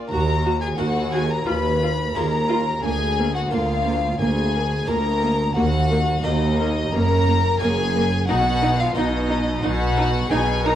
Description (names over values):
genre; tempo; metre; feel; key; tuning
classical, baroque-style concerto movement with solo episodes; 88 BPM; 4/4; straight; Eb minor; A4 = 437 Hz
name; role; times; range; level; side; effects
rich chamber violin section; second line; 0.0-10.8 s; Eb4 to D5; -27 LUFS; left 4 dB; none
harpsichord; accompaniment; 0.0-10.8 s; D2 to Bb4; -29 LUFS; right 1 dB; none
rich chamber viola section; accompaniment; 0.0-10.7 s; Bb3 to Gb4; -27 LUFS; equal; none
rich chamber violin section; melody; 0.1-10.8 s; Eb5 to Cb6; -30 LUFS; left 8 dB; none
warm violin; melody; 0.1-10.8 s; D#5 to Cb6; -27 LUFS; left 1 dB; none
rich chamber double bass section; bass; 0.1-10.8 s; Gb1 to Eb2; -26 LUFS; right 2 dB; none
warm chamber cello section; bass; 0.1-10.8 s; D2 to B2; -24 LUFS; right 1 dB; none
room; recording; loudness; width
wet recital hall reverb, RT60 1.5 s; worn, warbling old tape, cassette tape, warbly pitch drift; -18 LUFS; side -11 dB against mid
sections
0.1-10.8 A section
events
none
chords
0.1 Ebm; 1.5 Fm7b5/Eb; 2.8 Bb7/D; 5.6 Ebm; 6.9 Gb; 8.3 B